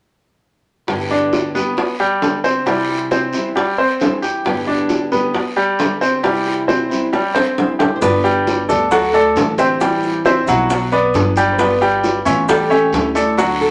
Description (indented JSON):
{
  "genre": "latin, Cuban son and guajira",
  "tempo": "134 BPM",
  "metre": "4/4",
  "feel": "straight",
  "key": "G major",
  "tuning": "A4 = 440 Hz",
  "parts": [
    { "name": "nylon-string guitar", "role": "accompaniment", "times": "0.9-13.7 s", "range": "G2 to G4", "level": "-26 LUFS", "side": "equal", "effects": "none" },
    { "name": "bongos", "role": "percussion", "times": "0.9-13.7 s", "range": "none", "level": "-23 LUFS", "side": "equal", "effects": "none" },
    { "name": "guiro", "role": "percussion", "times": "0.9-13.7 s", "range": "none", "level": "-32 LUFS", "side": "equal", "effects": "none" },
    { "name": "bright grand piano", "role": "arpeggios", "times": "1.1-13.7 s", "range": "F#3 to G5", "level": "-19 LUFS", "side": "equal", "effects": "none" },
    { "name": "nylon-string guitar", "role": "melody", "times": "8.0-13.7 s", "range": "F#4 to C5", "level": "-21 LUFS", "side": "equal", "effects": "none" },
    { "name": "upright bass", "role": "bass", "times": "8.0-13.7 s", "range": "G1 to D2", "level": "-26 LUFS", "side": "equal", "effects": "none" },
    { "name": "maracas", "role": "percussion", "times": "8.0-13.7 s", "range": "none", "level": "-41 LUFS", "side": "equal", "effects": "none" }
  ],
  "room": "wet studio reverb, RT60 0.6 s",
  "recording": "none",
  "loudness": "-16 LUFS",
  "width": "mono",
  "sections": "0.9-8.0 A section; 8.0-13.7 B section",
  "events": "drum fill 7.1-8.0",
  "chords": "0.9 Gadd9; 2.7 C; 4.5 Gadd9; 6.2 C; 8.0 Gadd9; 8.9 D; 9.8 Am7; 10.7 Bm; 11.6 G7; 12.5 A7"
}